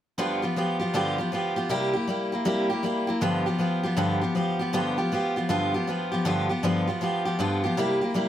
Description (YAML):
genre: rock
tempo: 158 BPM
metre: 4/4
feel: swing 65% on 8ths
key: G mixolydian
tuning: A4 = 440 Hz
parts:
  - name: picked steel-string acoustic guitar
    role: solo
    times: 0.2-8.3 s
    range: G2 to G4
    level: -23 LUFS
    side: equal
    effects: analog delay
room: light reverb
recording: none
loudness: -24 LUFS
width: side -11 dB against mid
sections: 0.2-6.3 A section; 6.3-8.3 B section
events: none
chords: 0.2 G7; 1.7 C7; 3.2 G7; 7.8 C7